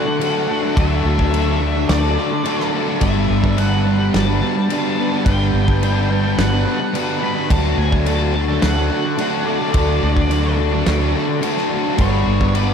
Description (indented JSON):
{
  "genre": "rock, shoegaze and dream pop",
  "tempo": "107 BPM",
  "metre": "4/4",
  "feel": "straight",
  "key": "unclear",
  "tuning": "A4 = 441 Hz",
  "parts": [
    { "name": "octave-fuzz lead guitar", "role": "melody", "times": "0.0-12.7 s", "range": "C#5 to B5", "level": "-27 LUFS", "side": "equal", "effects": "distortion, ping-pong delay" },
    { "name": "chorused pulse-width pad", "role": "sustained chords", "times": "0.0-12.7 s", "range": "G3 to C#6", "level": "-28 LUFS", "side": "left 1 dB", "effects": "none" },
    { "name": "electric guitar through a small old amp", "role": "arpeggios", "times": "0.0-12.7 s", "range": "F#3 to A4", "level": "-27 LUFS", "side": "equal", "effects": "ensemble chorus, ping-pong delay" },
    { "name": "crunchy overdriven guitar", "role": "riff", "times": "0.0-12.7 s", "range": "G2 to D4", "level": "-22 LUFS", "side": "right 8 dB", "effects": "reverse reverb" },
    { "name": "overdriven electric guitar", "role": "riff", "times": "0.0-12.7 s", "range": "D3 to B4", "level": "-22 LUFS", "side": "left 8 dB", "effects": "lush chorus" },
    { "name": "loose indie drum kit", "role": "drums", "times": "0.2-12.7 s", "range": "crash cymbal, kick drum, snare drum", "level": "-24 LUFS", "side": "equal", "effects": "none" },
    { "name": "vintage muted fingered electric bass", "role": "bass", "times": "0.8-12.7 s", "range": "G1 to D2", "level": "-19 LUFS", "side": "equal", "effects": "none" }
  ],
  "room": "moderate cathedral reverb, RT60 5.0 s",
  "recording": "dreamy mix soaked in reverb",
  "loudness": "-15 LUFS",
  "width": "side -7 dB against mid",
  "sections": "0.0-12.7 A section",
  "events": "none",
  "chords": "0.0 Dmaj7; 3.0 Gmaj7; 7.5 Dmaj7; 12.0 Gmaj7",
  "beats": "0.21 | 0.77 1.33 1.89 2.45 | 3.01 3.58 4.14 4.70 | 5.26 5.82 6.38 6.94 | 7.50 8.06 8.62 9.18 | 9.74 10.30 10.87 11.43 | 11.99 12.55"
}